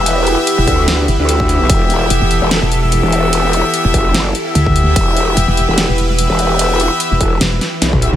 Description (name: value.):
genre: heavy wobble dubstep.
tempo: 147 BPM.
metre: 4/4.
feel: swing 55% on 16ths, half-time.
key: E minor.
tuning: A4 = 441 Hz.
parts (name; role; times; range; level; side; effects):
supersaw pad; sustained chords; 0.0-8.2 s; E3 to B4; -20 LUFS; right 1 dB; phaser, sidechain pumping.
bright brass ensemble; stabs; 0.0-8.1 s; B3 to E5; -17 LUFS; left 2 dB; dub echo.
growl bass; bass; 0.0-8.2 s; E1 to D2; -15 LUFS; equal; chorus, overdrive.
big-room dance drum kit; drums; 0.1-8.2 s; hi-hat, ride cymbal, snare drum, toms; -19 LUFS; equal; none.
pulsing pluck wobble bass; bass; 0.6-7.6 s; E1 to D2; -14 LUFS; equal; chorus, overdrive.
electronic kick drum; drums; 0.7-8.0 s; none; -16 LUFS; equal; none.
room: light reverb, digital ambience.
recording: none.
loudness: -11 LUFS.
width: side -11 dB against mid.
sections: 0.0-8.2 A section.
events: drum fill 7.6-8.2.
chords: 0.0 Em.